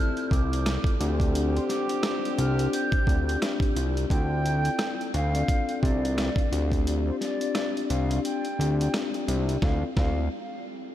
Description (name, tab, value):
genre	hip hop, boom-bap hip-hop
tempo	87 BPM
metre	4/4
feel	swing 59% on 16ths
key	D minor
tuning	A4 = 440 Hz
part	concert flute	melody	0.0-10.3 s	C5 to G6	-34 LUFS	right 1 dB	high-pass filter, low-pass filter, diffuse ambient delay
part	vibraphone with soft mallets	accompaniment	0.0-10.2 s	C4 to D5	-30 LUFS	left 5 dB	cassette tape, high-pass filter, low-pass filter
part	warm horn section	stabs	0.0-3.7 s	C3 to G4	-37 LUFS	right 7 dB	high-pass filter, low-pass filter, diffuse ambient delay
part	dusty soul sampler-style drum kit	drums	0.2-10.2 s	hi-hat, kick drum, rim click, snare drum	-28 LUFS	equal	none
part	fat analog bass	bass	0.3-10.3 s	C2 to D2	-26 LUFS	equal	none
room	light reverb, studio reverb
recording	none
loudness	-23 LUFS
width	side -12 dB against mid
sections	0.0-4.1 A section; 4.1-9.6 B section; 9.6-10.9 C section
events	kick muted 8.2-9.6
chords	0.0 Dm9; 1.0 G7sus4; 4.1 Dm9; 6.5 G7sus4; 9.6 Dm9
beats	0.66 | 1.35 2.04 2.73 3.42 | 4.11 4.79 5.48 6.17 | 6.86 7.55 8.24 8.93 | 9.62